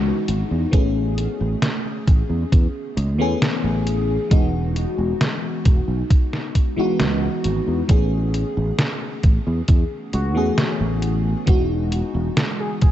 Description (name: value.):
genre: vaporwave.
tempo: 67 BPM.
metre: 4/4.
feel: straight.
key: unclear.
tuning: A4 = 440 Hz.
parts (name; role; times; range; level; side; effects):
FM electric piano with soft pad layer; accompaniment; 0.0-12.9 s; E3 to G#4; -24 LUFS; left 1 dB; phaser, wide subtle chorus, tape echo.
sustaining fretless electric bass; bass; 0.0-12.9 s; E1 to E2; -22 LUFS; equal; analog chorus.
detuned 8-bit digital drum machine; drums; 0.3-12.9 s; hi-hat, snare drum; -24 LUFS; equal; none.
electronic kick drum; drums; 0.7-12.9 s; none; -15 LUFS; equal; none.
warm velvety synth lead; melody; 10.1-12.9 s; F#4 to G#4; -34 LUFS; left 1 dB; chorus, tape echo.
room: digital ambience.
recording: cassette tape, nothing above 7.9 kHz.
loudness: -18 LUFS.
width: side -12 dB against mid.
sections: 0.0-12.9 A section.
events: none.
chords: 0.0 Emaj9; 0.7 Amaj9; 4.3 Emaj9; 7.9 Amaj9; 11.5 Emaj9.